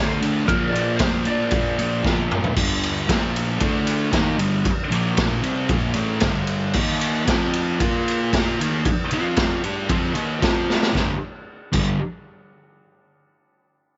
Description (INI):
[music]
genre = garage rock duo or trio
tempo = 114 BPM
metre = 4/4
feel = straight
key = G minor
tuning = A4 = 439 Hz
[part]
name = clean lap steel guitar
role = melody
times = 0.0-2.0 s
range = Bb4 to D5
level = -28 LUFS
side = equal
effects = none
[part]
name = thick fuzz guitar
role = riff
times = 0.0-11.9 s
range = G2 to Bb4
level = -24 LUFS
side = equal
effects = distortion
[part]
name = raw garage drum kit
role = drums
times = 0.2-11.9 s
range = crash cymbal, kick drum, ride cymbal, snare drum, toms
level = -25 LUFS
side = equal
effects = none
[sound]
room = little or no reverb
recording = nothing above 7.7 kHz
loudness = -21 LUFS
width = mono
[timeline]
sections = 0.0-2.6 A section; 2.6-11.0 B section; 11.0-13.1 C section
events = drum fill 2.0-2.6, 10.7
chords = 0.5 Bb; 2.6 G5; 3.1 Bb5; 3.6 D5; 4.1 Gm; 4.9 Bb5; 5.4 Gm; 6.8 Eb5; 7.3 F5; 7.8 Bb5; 8.3 Eb5; 9.1 F5; 9.6 Eb5; 10.4 F5; 11.0 G5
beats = | 0.48 1.00 1.52 2.05 | 2.57 3.09 3.62 4.14 | 4.66 5.19 5.71 6.23 | 6.76 7.28 7.81 8.33 | 8.86 9.38 9.90 10.43 | 10.95 11.48